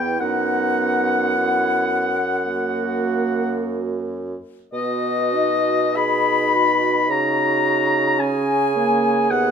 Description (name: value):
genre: classical, slow romantic movement for wind quintet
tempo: 53 BPM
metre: 4/4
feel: rubato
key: B major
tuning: A4 = 440 Hz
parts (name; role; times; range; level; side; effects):
- mellow hollow concert flute; melody; 0.0-9.5 s; D#5 to B5; -25 LUFS; left 11 dB; none
- clear oboe; second line; 0.0-9.5 s; D#5 to B5; -21 LUFS; left 2 dB; none
- clear clarinet; accompaniment; 0.0-9.5 s; D#4 to G#4; -26 LUFS; right 13 dB; none
- warm French horn; accompaniment; 0.0-9.5 s; A#3 to D#4; -26 LUFS; right 1 dB; none
- warm bassoon; bass; 0.0-9.5 s; D#2 to C#3; -25 LUFS; right 2 dB; none
room: moderate recital hall reverb, RT60 1.4 s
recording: close, detailed microphones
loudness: -17 LUFS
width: side -7 dB against mid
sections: 0.0-9.5 A section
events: none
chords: 0.2 B/F#; 2.5 F#; 4.7 B; 7.1 F#/C#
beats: | 0.20 1.34 2.45 3.58 | 4.73 5.96 7.09 8.19 | 9.30